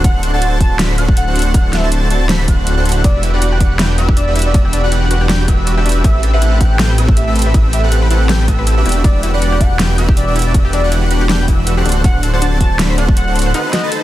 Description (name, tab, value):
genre	future bass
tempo	160 BPM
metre	4/4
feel	swing 56% on 16ths, half-time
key	E minor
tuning	A4 = 437 Hz
part	warm velvety synth lead	melody	0.0-13.9 s	D5 to A5	-23 LUFS	equal	chorus, sidechain pumping, dub echo
part	shimmering ambient pad	sustained chords	0.0-14.0 s	D3 to G4	-27 LUFS	equal	none
part	airy dreamy lead	arpeggios	0.0-14.0 s	E6 to B6	-25 LUFS	right 1 dB	chorus, sidechain pumping, dub echo
part	dense compressed supersaw	riff	0.0-14.0 s	C4 to B5	-20 LUFS	right 1 dB	sidechain pumping
part	wide detuned saw bass	bass	0.0-13.5 s	D1 to A1	-14 LUFS	equal	chorus, sidechain pumping
part	big-room dance drum kit	drums	0.0-14.0 s	hi-hat, snare drum	-20 LUFS	equal	overdrive, small room ambience
part	electronic kick drum	drums	0.0-13.2 s	none	-12 LUFS	equal	small room ambience
part	wide unison pluck	arpeggios	3.0-14.0 s	D4 to C5	-26 LUFS	left 3 dB	sidechain pumping, dub echo
room	digital ambience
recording	dense, heavily limited modern master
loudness	-11 LUFS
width	side -14 dB against mid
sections	0.0-14.0 A section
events	break 13.5-14.0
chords	0.0 D7; 3.0 Em9; 6.0 Am9; 8.9 Em9; 11.9 D7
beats	| 0.04 0.42 0.79 1.17 | 1.54 1.92 2.29 2.67 | 3.04 3.42 3.79 4.17 | 4.54 4.92 5.29 5.67 | 6.04 6.42 6.79 7.17 | 7.54 7.92 8.29 8.67 | 9.04 9.42 9.79 10.17 | 10.54 10.92 11.29 11.67 | 12.04 12.42 12.79 13.17 | 13.54 13.92